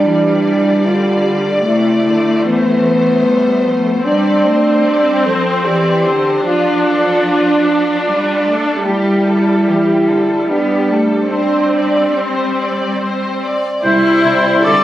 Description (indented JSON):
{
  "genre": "cinematic, emotional film score for orchestra",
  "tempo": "75 BPM",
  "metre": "3/4",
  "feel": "rubato",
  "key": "C major",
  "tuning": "A4 = 444 Hz",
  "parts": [
    { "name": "clear French horn", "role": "melody", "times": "0.0-13.0 s", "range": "B3 to A4", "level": "-16 LUFS", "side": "equal", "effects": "none" },
    { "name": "warm studio violin section", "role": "melody", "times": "0.0-14.7 s", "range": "E4 to D5", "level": "-22 LUFS", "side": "left 2 dB", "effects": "none" },
    { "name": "rich studio viola section", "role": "accompaniment", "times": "0.0-14.8 s", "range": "G3 to A4", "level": "-16 LUFS", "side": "equal", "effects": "none" },
    { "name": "clear studio cello section", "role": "bass", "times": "0.0-14.8 s", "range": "C3 to B3", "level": "-20 LUFS", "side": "equal", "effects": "none" },
    { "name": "clear oboe", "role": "second line", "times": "13.8-14.8 s", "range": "C5 to D5", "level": "-13 LUFS", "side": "left 1 dB", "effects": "none" },
    { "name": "hollow flute section", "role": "second line", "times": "13.8-14.8 s", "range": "E4 to F4", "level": "-16 LUFS", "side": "left 1 dB", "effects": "none" },
    { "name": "warm studio violin section", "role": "second line", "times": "13.8-14.8 s", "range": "C5 to D5", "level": "-21 LUFS", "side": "left 2 dB", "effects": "none" },
    { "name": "mellow French horn section", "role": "sustained chords", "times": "13.8-14.8 s", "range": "G3 to C4", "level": "-20 LUFS", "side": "left 2 dB", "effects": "none" },
    { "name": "rich studio double bass section", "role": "bass", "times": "13.8-14.7 s", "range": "C2", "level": "-24 LUFS", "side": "right 2 dB", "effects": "none" }
  ],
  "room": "light reverb",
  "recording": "recorded on a phone in the room, club reverb",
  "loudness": "-11 LUFS",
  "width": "side -13 dB against mid",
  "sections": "0.0-13.8 A section; 13.8-14.8 B section",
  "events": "none",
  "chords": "0.0 G5; 1.7 Amadd9/C; 4.1 Csus2/G; 6.5 Dm/F; 8.9 Gsus2; 11.3 Csus2/G; 13.8 C"
}